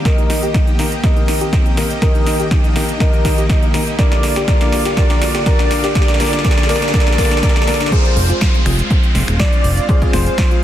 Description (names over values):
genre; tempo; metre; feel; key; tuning
progressive house; 122 BPM; 4/4; straight; Bb mixolydian; A4 = 440 Hz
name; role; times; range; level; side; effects
supersaw pad; sustained chords; 0.0-10.6 s; Ab3 to G5; -27 LUFS; right 1 dB; sidechain pumping
dark grand piano; stabs; 0.0-10.6 s; D3 to Bb4; -22 LUFS; left 4 dB; sidechain pumping, tape echo
riser, noise sweep and downlifter; sound effects; 0.0-10.6 s; none; -27 LUFS; right 1 dB; none
wide unison lead; melody; 0.1-10.6 s; C5 to Eb5; -23 LUFS; right 1 dB; tape echo
soft round pluck; arpeggios; 0.1-10.6 s; C4 to C5; -25 LUFS; equal; wide subtle chorus, sidechain pumping, tape echo
big-room dance drum kit; drums; 0.1-10.6 s; finger snaps, hi-hat, snare drum; -22 LUFS; equal; overdrive, high-pass filter on snare, high-pass filter on hats, high-pass filter on room
electronic kick drum; drums; 0.1-10.5 s; none; -14 LUFS; equal; overdrive
soft synth bell; second line; 7.9-10.6 s; C5 to D5; -31 LUFS; left 4 dB; none
fat analog bass; bass; 8.2-10.3 s; Eb1 to F1; -16 LUFS; equal; sidechain pumping
room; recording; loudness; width
light reverb; dense, heavily limited modern master; -12 LUFS; side -12 dB against mid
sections
0.0-7.9 A section; 7.9-10.6 B section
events
build-up 0.0-7.9; drum fill 0.0-7.9; riser 0.0-7.9; filter sweep on synth pluck 0.0-7.9; filter sweep on grand piano 0.0-7.9; filter sweep on analog synth lead 0.0-7.9; noise sweep 6.0-7.9; drop 7.9-10.6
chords
0.1 Eb; 4.0 Bb; 7.9 Fm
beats
| 0.05 0.54 1.04 1.53 | 2.02 2.51 3.00 3.50 | 3.99 4.48 4.97 5.46 | 5.95 6.45 6.94 7.43 | 7.92 8.41 8.90 9.40 | 9.89 10.38